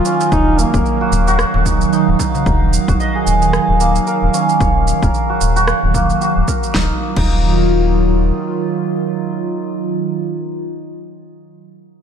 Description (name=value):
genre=organic downtempo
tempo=112 BPM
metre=4/4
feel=swing 57% on 16ths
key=Eb minor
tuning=A4 = 441 Hz
part: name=mellow duduk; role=melody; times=0.0-1.7 s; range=Bb3 to F4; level=-20 LUFS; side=left 1 dB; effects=digital delay
part: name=warbly tape-like pad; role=sustained chords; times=0.0-10.6 s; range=Eb3 to F5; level=-18 LUFS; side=right 3 dB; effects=chorus, built-in reverb, phaser, sidechain pumping
part: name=santur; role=arpeggios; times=0.0-10.8 s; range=Bb3 to Eb5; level=-20 LUFS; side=right 1 dB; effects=low-pass filter, digital delay
part: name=deep house drum kit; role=drums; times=0.1-7.3 s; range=crash cymbal, rim click, shaker, snare drum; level=-24 LUFS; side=right 2 dB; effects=overdrive
part: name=darbuka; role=percussion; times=0.2-2.4 s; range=none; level=-28 LUFS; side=right 3 dB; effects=none
part: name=round analog bass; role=bass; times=0.3-8.3 s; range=Eb1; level=-16 LUFS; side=equal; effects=sidechain pumping
part: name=electronic kick drum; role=drums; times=0.3-7.3 s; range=none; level=-19 LUFS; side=equal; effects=overdrive
room=moderate echo chamber reverb, RT60 2.1 s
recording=dark, warm production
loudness=-13 LUFS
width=side -8 dB against mid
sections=0.0-6.7 A section; 6.7-11.0 B section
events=filter sweep on analog synth bass 0.0-6.7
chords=0.0 Ebmadd9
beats=| 0.32 0.85 1.39 1.93 | 2.46 3.00 3.53 4.07 | 4.60 5.14 5.67 6.21 | 6.75 7.28 7.82 8.35 | 8.89 9.43 9.96 10.50